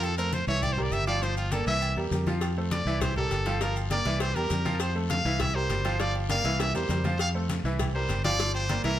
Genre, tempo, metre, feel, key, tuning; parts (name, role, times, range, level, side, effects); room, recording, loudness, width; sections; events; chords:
latin, salsa; 201 BPM; 4/4; straight; A4 = 440 Hz
brilliant trumpet; melody; 0.0-9.0 s; F4 to F5; -30 LUFS; equal
bright grand piano; accompaniment; 0.0-9.0 s; E3 to F5; -32 LUFS; right 1 dB
fingered electric bass; bass; 0.0-9.0 s; G1 to F2; -29 LUFS; equal
agogo bells and timbales; percussion; 0.0-8.8 s; -40 LUFS; right 5 dB
congas; percussion; 0.0-9.0 s; -36 LUFS; left 2 dB
guiro; percussion; 0.0-9.0 s; -45 LUFS; left 4 dB
maracas; percussion; 0.0-9.0 s; -44 LUFS; left 5 dB
cowbell; percussion; 2.4-9.0 s; -37 LUFS; left 5 dB
moderate large studio reverb, RT60 1.2 s; -25 LUFS; side -12 dB against mid
0.0-9.0 A section
trumpet solo 0.0-9.0; drum fill 6.6-7.2
0.0 Fmaj7; 0.6 C7; 1.2 Gm7; 1.8 C7; 2.4 Fmaj7; 3.0 C7; 3.6 Gm7; 4.2 C7; 4.8 Fmaj7; 5.4 C7; 6.0 Gm7; 6.6 C7; 7.2 Fmaj7; 7.8 C7; 8.4 Gm7